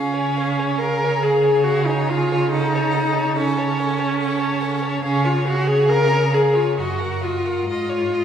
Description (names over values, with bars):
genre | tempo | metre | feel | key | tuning
classical, slow romantic movement for string quartet | 65-73 BPM | 3/4 | rubato | Db major | A4 = 445 Hz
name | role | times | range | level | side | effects
clear violin | melody | 0.0-8.2 s | Db5 to A5 | -30 LUFS | left 6 dB | none
rich violin | second line | 0.0-8.2 s | Gb4 to Eb5 | -30 LUFS | left 2 dB | none
clear viola | accompaniment | 0.0-8.2 s | Db4 to Bb4 | -19 LUFS | equal | none
warm cello | bass | 0.0-8.2 s | Gb2 to Db3 | -23 LUFS | right 3 dB | none
room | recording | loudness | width
wet scoring stage reverb, RT60 1.7 s | heard from further back in the room | -17 LUFS | side -8 dB against mid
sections
0.0-8.2 A section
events
none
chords
0.0 Db; 2.5 Gbm/Db; 5.0 Db; 6.8 Ebm/Gb; 7.7 Absus4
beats
0.79 1.66 | 2.52 3.37 4.20 | 5.03 5.88 6.77 | 7.68